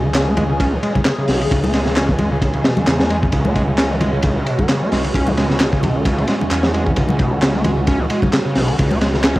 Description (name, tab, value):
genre	breakbeat, breaks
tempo	132 BPM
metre	4/4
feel	swing 55% on 16ths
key	C# minor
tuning	A4 = 440 Hz
part	phased analog pad	sustained chords	0.0-9.4 s	E3 to G#4	-23 LUFS	equal	phaser, chorus, vintage 12-bit sampler grit, sidechain pumping, cassette tape
part	overdriven acid bass	riff	0.0-9.4 s	B2 to C#4	-20 LUFS	equal	distortion, cassette tape, analog delay
part	detuned saw bass	bass	0.0-9.4 s	B1 to E2	-21 LUFS	equal	none
part	crunchy breakbeat drum kit	drums	0.1-9.4 s	hi-hat, kick drum, ride cymbal, snare drum	-19 LUFS	equal	cassette tape
part	electronic handclaps	drums	0.1-9.3 s	none	-25 LUFS	equal	cassette tape
part	congas	percussion	0.4-9.0 s	none	-24 LUFS	left 1 dB	none
room	light reverb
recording	home recording on cassette, vinyl crackle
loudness	-14 LUFS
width	side -18 dB against mid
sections	0.0-9.4 A section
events	none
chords	0.0 C#m